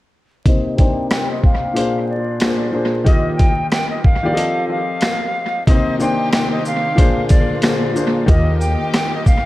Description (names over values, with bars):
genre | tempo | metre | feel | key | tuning
hip hop, boom-bap hip-hop | 92 BPM | 4/4 | swing 62% on 16ths | C minor | A4 = 444 Hz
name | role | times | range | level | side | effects
concert flute | melody | 0.5-9.5 s | D5 to G5 | -22 LUFS | equal | low-pass filter, analog delay
warm grand piano | accompaniment | 0.5-9.4 s | Bb2 to Eb5 | -20 LUFS | left 2 dB | cassette tape, low-pass filter, analog delay
boom bap sampler-style drum kit | drums | 0.5-9.4 s | hi-hat, kick drum, rim click, shaker, snare drum | -16 LUFS | equal | analog delay
warm studio string section | sustained chords | 5.7-9.5 s | D3 to G4 | -26 LUFS | right 1 dB | none
upright bass | bass | 8.3-8.7 s | Eb2 | -15 LUFS | equal | none
room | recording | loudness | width
light reverb, studio ambience | echo-heavy mix, vinyl crackle | -14 LUFS | side -17 dB against mid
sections
0.5-5.7 A section; 5.7-9.5 B section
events
filter sweep 0.5-5.7; break 4.4-5.7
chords
0.5 Cm7; 1.8 Bb7; 3.1 Eb; 4.4 F7; 5.7 Cm7; 7.0 Bb7; 8.3 Eb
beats
| 0.45 1.11 1.76 2.41 | 3.06 3.71 4.37 5.02 | 5.67 6.32 6.98 7.63 | 8.28 8.93